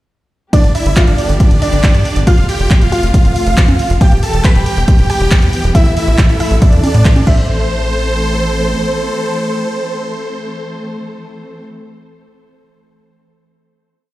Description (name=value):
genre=uplifting trance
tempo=138 BPM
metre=4/4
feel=straight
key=A minor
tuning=A4 = 441 Hz
part: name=supersaw chords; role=melody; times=0.5-11.7 s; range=D4 to A5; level=-19 LUFS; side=right 1 dB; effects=phaser, sidechain pumping, digital delay
part: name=glassy wavetable pluck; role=second line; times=0.5-11.7 s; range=D4 to B5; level=-22 LUFS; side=equal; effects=chorus, tape echo
part: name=warm symphonic string section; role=sustained chords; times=0.5-11.7 s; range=C3 to A4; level=-21 LUFS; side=left 1 dB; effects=sidechain pumping
part: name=electronic kick drum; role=drums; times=0.5-7.4 s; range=none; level=-10 LUFS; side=equal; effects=none
part: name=punchy analog drum machine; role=drums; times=0.5-7.4 s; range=congas, crash cymbal, handclaps, hi-hat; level=-22 LUFS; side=right 1 dB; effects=none
part: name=tight sequencer bass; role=bass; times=0.6-8.8 s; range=E1 to A2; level=-14 LUFS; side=equal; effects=sidechain pumping
room=little or no reverb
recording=played on a big sound system in a bare room, stone room reverb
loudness=-10 LUFS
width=side -16 dB against mid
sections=0.5-7.5 drop; 7.5-11.0 final hit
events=drop 0.5-7.5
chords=0.5 G; 2.3 F; 4.0 Em; 5.7 Asus2; 7.3 Am